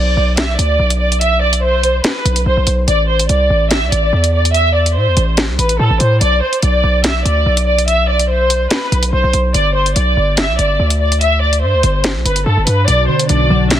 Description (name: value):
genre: hip hop, drill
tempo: 144 BPM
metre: 4/4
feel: half-time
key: B phrygian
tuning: A4 = 440 Hz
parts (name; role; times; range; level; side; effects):
- dark studio violin section; melody; 0.0-13.8 s; A4 to E5; -15 LUFS; equal; low-pass filter
- hard-hitting 808-style bass; bass; 0.0-13.8 s; G1 to A2; -14 LUFS; equal; none
- drill drum kit; drums; 0.4-13.8 s; hi-hat, snare drum; -18 LUFS; equal; none
- glassy digital keys; accompaniment; 12.9-13.8 s; B2 to F#3; -16 LUFS; equal; chorus, low-pass filter
- hollow soft pad; sustained chords; 12.9-13.8 s; B2 to D5; -22 LUFS; left 1 dB; ensemble chorus
room: digital ambience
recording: dense, heavily limited modern master, vinyl crackle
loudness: -11 LUFS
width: side -11 dB against mid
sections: 0.0-12.9 A section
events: none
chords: 0.0 Bm; 2.9 Am; 6.2 Bm; 9.5 G5; 12.9 Bm